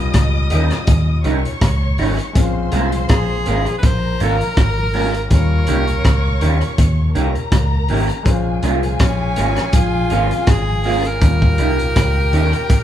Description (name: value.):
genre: lovers rock reggae.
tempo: 81 BPM.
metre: 4/4.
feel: swing 55% on 16ths.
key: Bb dorian.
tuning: A4 = 440 Hz.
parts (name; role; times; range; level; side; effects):
warm studio string section; second line; 0.0-12.8 s; G4 to Eb6; -26 LUFS; left 3 dB; none.
mellow tonewheel organ; accompaniment; 0.0-12.6 s; Eb2 to Eb4; -29 LUFS; equal; none.
warm grand piano; accompaniment; 0.0-12.8 s; G3 to C5; -28 LUFS; left 4 dB; tape echo.
vintage muted fingered electric bass; bass; 0.0-12.5 s; Ab1 to Eb2; -18 LUFS; equal; none.
crunchy breakbeat drum kit; drums; 0.1-12.8 s; hi-hat, kick drum, rim click; -18 LUFS; equal; none.
electric guitar through a small old amp; stabs; 0.5-12.5 s; G3 to Bb4; -23 LUFS; right 4 dB; phaser.
edgy tenor saxophone; melody; 3.1-12.8 s; Db4 to C5; -23 LUFS; equal; none.
room: moderate large studio reverb, RT60 1.0 s.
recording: band playing live in one room.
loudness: -14 LUFS.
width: side -11 dB against mid.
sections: 0.0-12.8 A section.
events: none.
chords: 0.0 Eb7; 2.4 Bbm7; 5.3 Eb7; 8.3 Bbm7; 11.2 Eb7.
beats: 0.14 0.88 1.62 | 2.36 3.10 3.83 4.57 | 5.31 6.05 6.79 7.53 | 8.26 9.00 9.74 10.48 | 11.22 11.96 12.70.